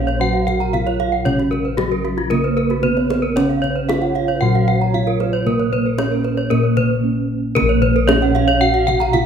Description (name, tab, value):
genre	Balinese gamelan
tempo	114 BPM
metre	4/4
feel	straight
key	Bb pelog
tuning	A4 = 440 Hz
part	gamelan-type bronze metallophone	melody	0.0-9.3 s	Gb3 to Gb4	-22 LUFS	right 4 dB	none
part	breathy mellow low xiao	second line	0.0-9.3 s	Bb4 to Gb5	-27 LUFS	right 7 dB	none
part	gamelan-type bronze metallophone	accompaniment	0.0-7.6 s	Db3 to Bb3	-25 LUFS	right 3 dB	none
part	gamelan-type bronze metallophone	arpeggios	0.0-9.1 s	Gb4 to Bb5	-25 LUFS	right 7 dB	none
part	gamelan-type bossed gongs	bass	0.0-9.3 s	Bb1 to Bb4	-20 LUFS	left 3 dB	none
part	gamelan-type bronze metallophone	arpeggios	0.1-9.3 s	F4 to Gb5	-22 LUFS	left 3 dB	none
part	kendang	percussion	0.1-9.3 s	none	-26 LUFS	left 2 dB	none
room	wet recital hall reverb, RT60 1.5 s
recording	none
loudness	-15 LUFS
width	side -7 dB against mid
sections	0.0-7.6 A section; 7.6-9.3 A section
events	drum fill 7.2-7.6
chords	none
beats	0.21 0.73 | 1.26 1.78 2.31 2.83 | 3.36 3.88 4.41 4.93 | 5.46 5.98 6.51 7.03 | 7.56 8.08 8.61 9.13